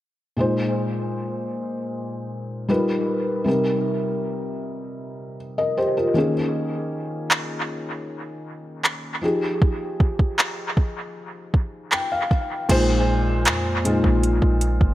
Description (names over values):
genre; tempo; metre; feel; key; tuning
contemporary R&B; 78 BPM; 4/4; straight; unclear; A4 = 439 Hz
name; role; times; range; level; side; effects
felt-muted upright piano; accompaniment; 0.4-14.9 s; Bb2 to G5; -23 LUFS; left 1 dB; dub echo
smooth R&B drum kit; drums; 7.3-14.9 s; crash cymbal, handclaps, hi-hat, kick drum; -21 LUFS; equal; overdrive, dub echo
clean 808-style bass; bass; 12.7-14.9 s; G1 to F2; -22 LUFS; right 1 dB; none
room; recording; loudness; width
light reverb, digital ambience; echo-heavy mix; -20 LUFS; side -14 dB against mid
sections
0.4-12.7 A section; 12.7-14.9 B section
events
felt piano fill 11.5-12.7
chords
0.4 Bb9sus4; 2.7 G7alt; 3.5 Cm7; 6.2 Eb7sus4; 9.2 Fm9; 12.7 Bb9sus4